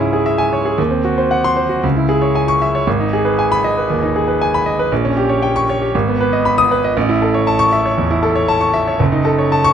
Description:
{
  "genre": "classical, virtuoso piano study",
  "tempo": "117 BPM",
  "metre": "4/4",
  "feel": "rubato",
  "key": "unclear",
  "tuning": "A4 = 441 Hz",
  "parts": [
    { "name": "clear grand piano", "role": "solo", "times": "0.0-9.7 s", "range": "F#1 to D#6", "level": "-13 LUFS", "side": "equal", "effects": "none" }
  ],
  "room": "light reverb",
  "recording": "close, detailed microphones",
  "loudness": "-13 LUFS",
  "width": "side -8 dB against mid",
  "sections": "0.0-9.7 A section",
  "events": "none",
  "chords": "0.0 C#m; 0.8 Cdim/Eb; 1.8 C#m; 2.9 G#m; 4.9 Gdim/Bb; 5.9 G#m; 7.0 A; 9.0 D#m7b5/F#",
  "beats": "0.26 | 0.79 1.32 1.84 2.36 | 2.87 3.37 3.88 4.39 | 4.91 5.42 5.94 6.45 | 6.96 7.47 7.98 8.49 | 9.00 9.52"
}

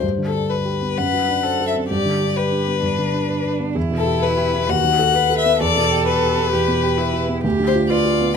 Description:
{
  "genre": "quick classical-period movement for piano trio",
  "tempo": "130 BPM",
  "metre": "4/4",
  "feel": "straight",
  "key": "G major",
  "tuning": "A4 = 440 Hz",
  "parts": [
    { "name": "rich violin", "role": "melody", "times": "0.0-8.4 s", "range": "A4 to F#5", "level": "-20 LUFS", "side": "left 10 dB", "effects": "none" },
    { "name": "dark baby grand piano", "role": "accompaniment", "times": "0.0-8.4 s", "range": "D2 to C5", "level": "-20 LUFS", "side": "right 1 dB", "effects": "none" },
    { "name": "rich cello", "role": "second line", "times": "1.0-8.4 s", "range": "D4 to B4", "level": "-24 LUFS", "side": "right 6 dB", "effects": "none" }
  ],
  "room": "moderate recital hall reverb, RT60 1.7 s",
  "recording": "close, detailed microphones",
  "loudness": "-16 LUFS",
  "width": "side -6 dB against mid",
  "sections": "0.0-8.4 A section",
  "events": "none",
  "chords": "0.0 G; 1.0 D7/F#; 1.9 G; 3.8 Em; 4.7 B7/D#; 5.6 Em; 7.4 Bdim/D",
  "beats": "| 0.03 0.50 0.98 1.44 | 1.90 2.37 2.83 3.30 | 3.76 4.22 4.69 5.16 | 5.61 6.07 6.53 6.99 | 7.44 7.90"
}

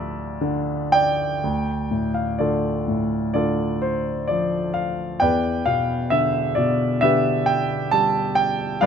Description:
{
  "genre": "classical, lyrical solo piano",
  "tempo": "56-67 BPM",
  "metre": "4/4",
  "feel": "rubato",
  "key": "D dorian",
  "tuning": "A4 = 440 Hz",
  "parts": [
    { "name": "warm grand piano", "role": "solo", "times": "0.0-8.9 s", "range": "D2 to A5", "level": "-19 LUFS", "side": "equal", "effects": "none" }
  ],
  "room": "light reverb",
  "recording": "close, detailed microphones",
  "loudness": "-19 LUFS",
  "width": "side -7 dB against mid",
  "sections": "0.0-1.4 A section; 1.4-8.9 B section",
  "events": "none",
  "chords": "0.0 Dm; 5.2 Em7",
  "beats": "0.42 | 1.43 2.39 3.35 4.29 | 5.21 6.12 7.02 7.93 | 8.82"
}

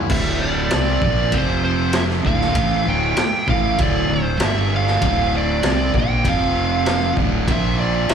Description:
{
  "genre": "quiet-loud alternative rock",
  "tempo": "98 BPM",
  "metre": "4/4",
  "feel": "straight",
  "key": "D minor",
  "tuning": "A4 = 441 Hz",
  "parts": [
    { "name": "fuzz guitar", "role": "riff", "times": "0.0-8.1 s", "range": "D2 to C4", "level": "-24 LUFS", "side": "left 10 dB", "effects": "distortion, slapback echo" },
    { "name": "fuzz lead guitar", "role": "melody", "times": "0.1-8.1 s", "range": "C5 to G5", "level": "-22 LUFS", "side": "right 3 dB", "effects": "distortion, slapback echo, tape echo" },
    { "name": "thick fuzz guitar", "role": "riff", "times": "0.1-8.1 s", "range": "D2 to C4", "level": "-24 LUFS", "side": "right 12 dB", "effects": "distortion, slapback echo" },
    { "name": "fuzz fingered electric bass", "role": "bass", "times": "0.1-8.1 s", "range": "D1 to C2", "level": "-23 LUFS", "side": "equal", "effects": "overdrive" },
    { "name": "raw garage drum kit", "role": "drums", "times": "0.1-8.1 s", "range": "crash cymbal, kick drum, ride cymbal, snare drum", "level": "-22 LUFS", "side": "equal", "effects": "none" }
  ],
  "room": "small room ambience",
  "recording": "live gig heard through the venue's PA, club reverb",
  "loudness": "-16 LUFS",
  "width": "side -7 dB against mid",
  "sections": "0.1-8.1 A section",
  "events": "none",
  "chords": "0.1 Dm; 1.3 F5; 2.3 Dm; 4.4 G5; 5.0 Dm; 6.3 F5; 7.2 D5; 7.5 Bb5",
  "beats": "| 0.11 0.72 1.34 1.95 | 2.57 3.18 3.79 4.41 | 5.03 5.64 6.26 6.87 | 7.49 8.10"
}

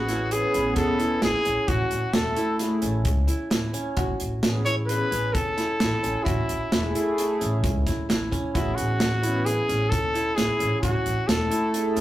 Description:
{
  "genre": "progressive instrumental, band music in an uneven meter",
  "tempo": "131 BPM",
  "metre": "5/4",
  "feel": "straight",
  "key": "F# minor",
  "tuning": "A4 = 440 Hz",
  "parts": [
    { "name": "bright trumpet", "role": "melody", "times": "0.0-11.7 s", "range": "E4 to C#5", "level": "-26 LUFS", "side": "left 1 dB", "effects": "none" },
    { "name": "qanun", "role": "arpeggios", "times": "0.0-12.0 s", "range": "C#4 to F#4", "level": "-31 LUFS", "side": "right 1 dB", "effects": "none" },
    { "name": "upright bass", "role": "bass", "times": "0.0-12.0 s", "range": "E1 to C#2", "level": "-28 LUFS", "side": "equal", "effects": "none" },
    { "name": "modern studio drum kit", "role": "drums", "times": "0.1-12.0 s", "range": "hi-hat, kick drum, snare drum", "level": "-27 LUFS", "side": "equal", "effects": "none" },
    { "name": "chorused pulse-width pad", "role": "accompaniment", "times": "0.3-12.0 s", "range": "A3 to B4", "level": "-28 LUFS", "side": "equal", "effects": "none" }
  ],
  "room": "moderate studio reverb, RT60 0.5 s",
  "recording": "rough rehearsal-room recording, tube saturation",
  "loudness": "-22 LUFS",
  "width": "side -14 dB against mid",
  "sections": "0.0-12.0 A section",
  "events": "none",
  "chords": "0.0 Amaj7; 1.7 F#m7; 4.0 Amaj7; 6.3 F#m7; 8.5 Amaj7; 10.8 F#m7",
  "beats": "0.30 0.76 1.22 | 1.68 2.14 2.60 3.06 3.52 | 3.97 4.43 4.89 5.35 5.81 | 6.26 6.72 7.18 7.63 8.09 | 8.55 9.00 9.46 9.91 10.37 | 10.83 11.28 11.73"
}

